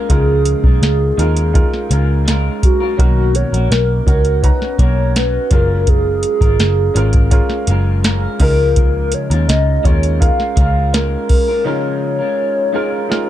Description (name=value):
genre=indie pop, bedroom pop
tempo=83 BPM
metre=4/4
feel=straight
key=Db mixolydian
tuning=A4 = 442 Hz
part: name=hollow clarinet-like synth lead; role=melody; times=0.0-13.3 s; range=Gb4 to F5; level=-19 LUFS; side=equal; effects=wide subtle chorus, plate reverb
part: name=electric guitar at the edge of break-up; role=accompaniment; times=0.0-13.3 s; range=Cb3 to Bb4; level=-23 LUFS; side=left 3 dB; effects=wide subtle chorus, warbly pitch drift, plate reverb
part: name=warm upright piano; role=accompaniment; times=0.0-13.3 s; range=Db4 to Bb5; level=-25 LUFS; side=right 4 dB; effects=plate reverb
part: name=vintage muted picked electric bass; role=bass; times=0.1-11.2 s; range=Gb1 to Eb2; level=-15 LUFS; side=equal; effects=none
part: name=soft vintage rhythm box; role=drums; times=0.1-13.3 s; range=hi-hat, kick drum, snare drum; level=-14 LUFS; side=equal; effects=none
room=light reverb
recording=dark, warm production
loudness=-12 LUFS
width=side -12 dB against mid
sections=0.0-13.3 A section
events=break 11.7-13.3; drum fill 13.1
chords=0.0 Db6; 3.0 Cbmaj9; 5.5 Gbmaj9; 8.4 Db6